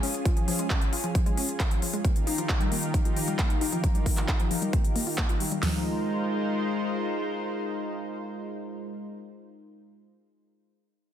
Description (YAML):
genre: uplifting trance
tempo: 134 BPM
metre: 4/4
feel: straight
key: Ab major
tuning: A4 = 440 Hz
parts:
  - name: lush unison pad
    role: sustained chords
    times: 0.0-9.1 s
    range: Eb3 to C5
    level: -31 LUFS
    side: equal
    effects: chorus, sidechain pumping
  - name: wide unison pluck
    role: arpeggios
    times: 0.0-5.8 s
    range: F3 to F4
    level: -32 LUFS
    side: left 2 dB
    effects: sidechain pumping, ping-pong delay
  - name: big-room dance drum kit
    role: drums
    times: 0.0-5.6 s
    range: handclaps, hi-hat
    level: -32 LUFS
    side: left 1 dB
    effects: overdrive, sidechain pumping on hats, studio reverb, sidechain pumping on perc
  - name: big-room dance drum kit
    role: drums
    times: 0.3-5.7 s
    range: hi-hat, kick drum, snare drum, toms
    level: -26 LUFS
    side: equal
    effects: overdrive, studio reverb
room: light reverb, digital ambience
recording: dense, heavily limited modern master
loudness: -25 LUFS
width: side -10 dB against mid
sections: 0.0-5.6 A section; 5.6-9.2 B section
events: filter sweep on synth pluck 0.0-5.6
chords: 0.0 Db; 2.0 Ebadd9; 5.6 Ab6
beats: | 0.26 0.70 1.15 1.60 | 2.05 2.49 2.94 3.39 | 3.84 4.29 4.73 5.18 | 5.63 6.08 6.52 6.97 | 7.42 7.87 8.31 8.76